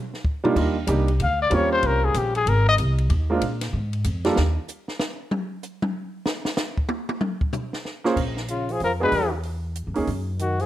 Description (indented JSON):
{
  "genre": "jazz, small-group swing and bop",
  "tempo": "190 BPM",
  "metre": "3/4",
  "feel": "swing 63% on 8ths",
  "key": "Bb minor",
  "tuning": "A4 = 440 Hz",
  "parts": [
    { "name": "compact cocktail drum kit", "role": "drums", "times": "0.1-10.6 s", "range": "crash cymbal, hi-hat, kick drum, ride cymbal, snare drum, toms", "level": "-28 LUFS", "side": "equal", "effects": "none" },
    { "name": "clear upright piano", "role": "accompaniment", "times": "0.4-4.4, 8.0-10.1 s", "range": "G3 to C5", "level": "-23 LUFS", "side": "right 3 dB", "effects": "none" },
    { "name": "upright bass", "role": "bass", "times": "0.6-4.6, 8.2-10.7 s", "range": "Ab1 to Bb2", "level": "-24 LUFS", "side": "equal", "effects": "none" },
    { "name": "mellow trumpet", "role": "melody", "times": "1.2-2.7, 8.5-10.7 s", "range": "F4 to F5", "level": "-22 LUFS", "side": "left 4 dB", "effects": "plate reverb" },
    { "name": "trombone with bucket mute", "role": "second line", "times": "8.5-10.7 s", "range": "Db3 to Ab3", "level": "-28 LUFS", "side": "right 2 dB", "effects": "none" }
  ],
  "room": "light reverb",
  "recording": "none",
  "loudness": "-21 LUFS",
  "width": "side -13 dB against mid",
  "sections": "0.6-8.2 A section; 8.2-10.7 B section",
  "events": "trumpet solo 0.0-8.2; drum solo 4.4-8.2",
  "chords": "0.0 Bb5; 0.6 Ebmaj9; 1.5 Eb13; 2.5 Ab; 3.4 Bb7(no3); 4.4 N.C.; 7.2 F5; 8.2 Bb5; 9.1 E; 10.1 Gb5"
}